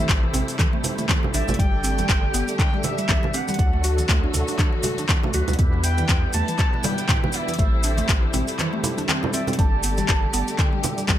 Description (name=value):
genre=afro house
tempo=120 BPM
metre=4/4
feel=swing 57% on 16ths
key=A dorian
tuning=A4 = 441 Hz
part: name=expressive synth lead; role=melody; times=0.0-11.1 s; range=E5 to A5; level=-30 LUFS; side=right 1 dB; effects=wide subtle chorus, ping-pong delay
part: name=muted studio string section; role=sustained chords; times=0.0-11.2 s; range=C3 to G4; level=-32 LUFS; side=left 2 dB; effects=sidechain pumping
part: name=mallet-like synth pluck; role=arpeggios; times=0.0-11.2 s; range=B2 to F#4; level=-30 LUFS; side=left 1 dB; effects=chorus, sidechain pumping, ping-pong delay
part: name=percussive tonewheel organ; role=stabs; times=0.0-11.2 s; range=F#3 to D5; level=-32 LUFS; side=right 2 dB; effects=overdrive, chorus vibrato, slow rotary speaker, sidechain pumping, ping-pong delay
part: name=warm sub bass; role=bass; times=0.0-11.2 s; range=G1 to A2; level=-25 LUFS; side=equal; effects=sidechain pumping
part: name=deep house drum kit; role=drums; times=0.1-11.2 s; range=handclaps, hi-hat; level=-26 LUFS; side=left 1 dB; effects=overdrive
part: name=electronic kick drum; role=drums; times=0.1-11.2 s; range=none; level=-21 LUFS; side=equal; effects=none
part: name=maracas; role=percussion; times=0.1-11.2 s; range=none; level=-33 LUFS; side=right 4 dB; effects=none
part: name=congas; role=percussion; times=0.3-11.2 s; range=none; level=-30 LUFS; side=right 4 dB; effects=none
room=little or no reverb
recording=none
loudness=-19 LUFS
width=side -12 dB against mid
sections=0.0-11.2 A section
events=none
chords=0.0 Am7; 1.6 Gsus2; 3.6 D; 5.6 Em7; 7.6 Am7; 9.6 Gsus2